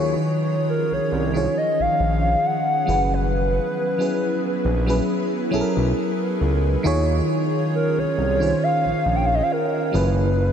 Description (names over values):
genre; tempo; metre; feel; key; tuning
contemporary R&B; 68 BPM; 4/4; swing 54% on 16ths; unclear; A4 = 440 Hz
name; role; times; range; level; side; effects
FM electric piano with soft pad layer; accompaniment; 0.0-10.5 s; Eb3 to Db5; -23 LUFS; equal; chorus
ethereal airy pad; sustained chords; 0.0-10.5 s; Eb3 to Cb5; -28 LUFS; right 1 dB; ensemble chorus, built-in reverb
smooth synth bass; bass; 0.0-10.5 s; Gb1 to Eb2; -22 LUFS; equal; none
hollow clarinet-like synth lead; melody; 0.7-10.5 s; Bb4 to G5; -23 LUFS; equal; chorus, ping-pong delay
room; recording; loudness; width
moderate huge ambient reverb, RT60 4.2 s; dreamy mix soaked in reverb; -19 LUFS; side -8 dB against mid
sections
0.0-10.5 A section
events
none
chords
0.0 Eb9sus4; 2.9 Gb9sus4; 6.8 Eb9sus4; 9.9 Gb9sus4